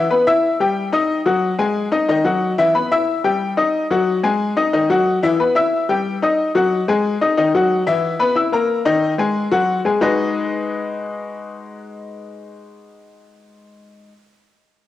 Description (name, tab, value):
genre	latin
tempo	182 BPM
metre	4/4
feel	straight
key	G# minor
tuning	A4 = 440 Hz
part	bright upright piano	solo	0.0-14.1 s	D#3 to E6	-16 LUFS	left 2 dB	cassette tape
room	moderate lush hall reverb, RT60 2.4 s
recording	home recording on cassette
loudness	-15 LUFS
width	side -13 dB against mid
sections	0.0-7.4 A section; 7.4-10.0 B section; 10.0-12.6 C section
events	none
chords	0.1 G6; 0.8 D#; 1.4 G#5; 2.7 G6; 3.4 D#; 4.1 G#5; 5.4 G6; 6.1 D#; 6.7 G#5; 7.4 D#m; 8.0 E5; 8.7 D#5; 9.3 F#sus2; 10.0 G#m7